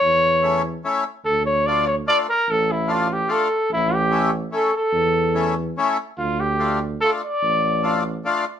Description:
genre	alpine folk, alpine dance band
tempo	146 BPM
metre	3/4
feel	swing 53% on 8ths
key	D harmonic minor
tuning	A4 = 440 Hz
part	mellow trumpet	melody	0.0-8.0 s	E4 to D5	-19 LUFS	equal	none
part	warm tuba	bass	0.0-8.2 s	A1 to E2	-25 LUFS	right 1 dB	none
part	accordion	accompaniment	0.4-8.5 s	A3 to F4	-23 LUFS	left 3 dB	none
room	light reverb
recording	band playing live in one room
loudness	-18 LUFS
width	side -9 dB against mid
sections	0.0-8.6 A section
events	none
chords	0.0 A; 1.3 Dm; 3.7 A; 6.2 Dm

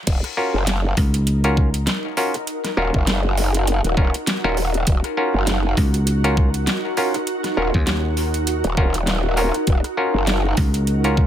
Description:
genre	glitch hop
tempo	100 BPM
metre	4/4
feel	swing 57% on 16ths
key	Eb minor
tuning	A4 = 440 Hz
part	growl bass	bass	0.1-10.6 s	Eb1 to Gb1	-20 LUFS	equal	chorus, high-pass filter
part	dubstep drum kit	drums	0.1-11.1 s	crash cymbal, hi-hat, rim click, snare drum	-25 LUFS	equal	none
part	electronic kick drum	drums	0.1-11.3 s	none	-18 LUFS	equal	none
part	ethereal airy pad	texture	0.8-11.3 s	Eb4 to Bb4	-26 LUFS	right 1 dB	ensemble chorus, built-in reverb, sidechain pumping
part	bright clav	stabs	0.4-11.3 s	Db4 to Bb4	-24 LUFS	left 1 dB	sidechain pumping, ping-pong delay
part	dry thumbed slap bass	bass	1.0-1.9, 5.8-11.3 s	Db2 to Eb2	-19 LUFS	equal	none
room	digital ambience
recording	high-pass filter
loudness	-17 LUFS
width	side -10 dB against mid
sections	0.1-11.3 A section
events	drop 0.1-11.3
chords	0.1 Ebm9

